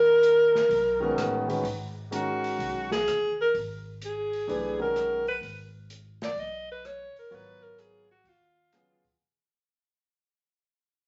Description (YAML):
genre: modal jazz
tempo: 127 BPM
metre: 4/4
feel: swing 67% on 8ths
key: unclear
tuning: A4 = 442 Hz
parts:
  - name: breathy alto saxophone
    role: melody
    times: 0.0-9.1 s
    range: F4 to Eb5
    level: -27 LUFS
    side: equal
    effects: none
  - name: upright bass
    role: bass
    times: 0.0-9.2 s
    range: Ab1 to Eb2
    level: -45 LUFS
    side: equal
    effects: none
  - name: open jazz drum kit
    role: drums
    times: 0.2-9.1 s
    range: hi-hat, kick drum, rim click, snare drum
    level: -43 LUFS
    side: equal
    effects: none
  - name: warm grand piano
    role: accompaniment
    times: 1.0-9.0 s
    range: Db3 to Db5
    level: -34 LUFS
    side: equal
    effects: none
room: wet large studio reverb, RT60 0.9 s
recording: vinyl crackle, nothing above 7.8 kHz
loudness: -27 LUFS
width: mono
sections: 0.0-1.6 A section; 1.6-9.2 B section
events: fade-out 1.6-9.2; alto saxophone solo 1.6-9.2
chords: 0.0 Abm9